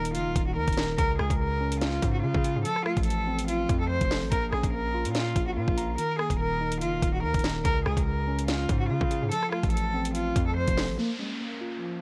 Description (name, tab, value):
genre	hip hop, drill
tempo	144 BPM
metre	4/4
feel	half-time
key	Bb minor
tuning	A4 = 440 Hz
part	warm cello	melody	0.0-12.0 s	F3 to C5	-32 LUFS	equal	low-pass filter, delay
part	mellow tine electric piano	accompaniment	0.0-12.0 s	Db3 to Bb5	-35 LUFS	equal	low-pass filter
part	distorted 808-style bass	bass	0.0-11.0 s	Eb1 to Db3	-33 LUFS	equal	distortion
part	drill drum kit	drums	0.1-10.9 s	hi-hat, kick drum, rim click, snare drum	-31 LUFS	equal	none
part	downlifter	sound effects	11.0-12.0 s	none	-40 LUFS	equal	none
room	little or no reverb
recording	worn, warbling old tape, cassette tape, warbly pitch drift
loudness	-27 LUFS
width	mono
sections	0.0-11.0 A section; 11.0-12.0 B section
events	filter sweep 11.0-12.0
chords	0.0 Ebm; 1.0 Db; 2.6 F; 4.3 Bbm; 6.0 Eb5; 7.7 Db; 9.3 F; 11.0 Bbm